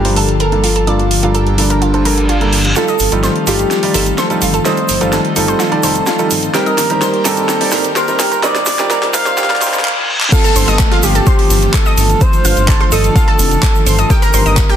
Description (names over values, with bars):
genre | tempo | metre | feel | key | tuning
progressive house | 127 BPM | 4/4 | straight | unclear | A4 = 442 Hz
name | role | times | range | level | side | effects
expressive synth lead | melody | 0.0-14.7 s | D4 to F5 | -18 LUFS | equal | chorus, ping-pong delay
airy breathy pad | sustained chords | 0.0-14.8 s | D3 to A4 | -21 LUFS | left 2 dB | chorus, sidechain pumping
clear grand piano | stabs | 0.0-9.8 s | G2 to D5 | -19 LUFS | right 3 dB | vintage 12-bit sampler grit, sidechain pumping, low-pass filter, ping-pong delay
dark detuned saw bass | bass | 0.0-14.6 s | F1 to G1 | -17 LUFS | equal | sidechain pumping
pop drum kit | drums | 0.0-14.8 s | crash cymbal, handclaps, hi-hat, rim click, snare drum | -18 LUFS | right 1 dB | overdrive, high-pass filter on hats, high-pass filter on snare, high-pass filter on cymbals, high-pass filter on room
analog pluck | arpeggios | 0.2-14.8 s | F4 to Eb6 | -20 LUFS | right 1 dB | chorus, sidechain pumping, ping-pong delay
reverse cymbal and downlifter | sound effects | 2.0-2.8, 9.6-14.1 s | none | -21 LUFS | left 1 dB | none
soft synth bell | second line | 2.8-14.7 s | G4 to F5 | -24 LUFS | equal | none
egg shaker | percussion | 2.8-14.7 s | none | -24 LUFS | right 4 dB | none
electronic kick drum | drums | 10.3-14.7 s | none | -13 LUFS | equal | none
room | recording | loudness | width
moderate lush hall reverb, RT60 1.8 s | dense, heavily limited modern master, high-pass filter | -10 LUFS | side -9 dB against mid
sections
0.0-2.8 A section; 2.8-10.3 B section; 10.3-14.8 C section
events
reverse cymbal 2.0-2.8, 9.6-10.3; build-up 2.8-10.3; drum fill 2.8-9.8, 9.8-10.3; drop 10.3-14.8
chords
0.0 Gm9; 2.8 F7/G; 6.5 Cm7/G; 10.3 F7/G; 14.1 Cm7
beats
0.40 | 0.87 1.34 1.82 2.29 | 2.76 3.23 3.71 4.18 | 4.65 5.12 5.60 6.07 | 6.54 7.01 7.49 7.96 | 8.43 8.90 9.38 9.85 | 10.32 10.79 11.27 11.74 | 12.21 12.68 13.16 13.63 | 14.10 14.57